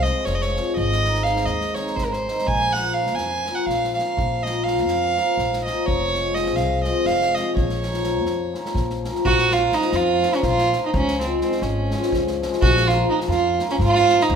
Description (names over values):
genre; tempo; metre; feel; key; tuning
balkan folk, Balkan wedding band; 248 BPM (eighths); 7/8; straight; Bb minor; A4 = 440 Hz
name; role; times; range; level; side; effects
warm violin; melody; 0.0-14.4 s; C4 to Ab5; -21 LUFS; right 4 dB; none
cimbalom; accompaniment; 0.0-14.4 s; Eb3 to F4; -24 LUFS; left 4 dB; none
upright bass; bass; 0.0-14.4 s; F1 to Ab2; -26 LUFS; left 1 dB; none
unplugged drum kit; percussion; 0.0-14.4 s; kick drum, snare drum; -29 LUFS; equal; none
room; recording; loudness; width
moderate recital hall reverb, RT60 1.5 s; minimal, uncompressed stereo recording; -18 LUFS; side -7 dB against mid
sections
0.0-9.3 A section; 9.3-14.4 B section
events
none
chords
0.0 Fm; 0.8 Ab; 2.5 Bbm; 5.9 Fm; 7.6 Bbm; 10.9 Db; 12.6 Bbm